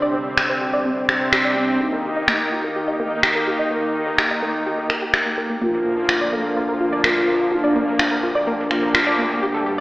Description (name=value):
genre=melodic techno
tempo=126 BPM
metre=4/4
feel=straight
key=unclear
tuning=A4 = 440 Hz
part: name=expressive synth lead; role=melody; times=0.0-9.8 s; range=D4 to Bb4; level=-25 LUFS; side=equal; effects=wide subtle chorus, dub echo
part: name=lush unison pad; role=sustained chords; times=0.0-9.8 s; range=D3 to G4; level=-28 LUFS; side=equal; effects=chorus
part: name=tight sequenced synth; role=arpeggios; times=0.0-9.8 s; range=Bb3 to Eb5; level=-25 LUFS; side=equal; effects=chorus, tape echo
part: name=brassy analog pad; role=stabs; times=0.0-9.8 s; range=D2 to Eb4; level=-24 LUFS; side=equal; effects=chorus, tape echo
part: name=gated 80s drum kit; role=drums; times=0.0-9.8 s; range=hi-hat, snare drum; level=-41 LUFS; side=equal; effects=none
part: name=warbly tape-like pad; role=texture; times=0.0-9.8 s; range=Bb3 to A5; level=-30 LUFS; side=equal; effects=chorus, built-in reverb
part: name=electronic finger snaps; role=drums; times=0.4-9.0 s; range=none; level=-20 LUFS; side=equal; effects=none
room=wet lush hall reverb, RT60 1.9 s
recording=played on a big sound system in a bare room, large studio reverb, AM radio sound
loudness=-17 LUFS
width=side -19 dB against mid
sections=0.0-9.8 A section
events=filter sweep on synth arpeggio sound 0.0-9.8; filter sweep on analog synth lead 0.0-9.8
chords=0.0 Csus2; 1.8 Eb; 5.6 Bb/D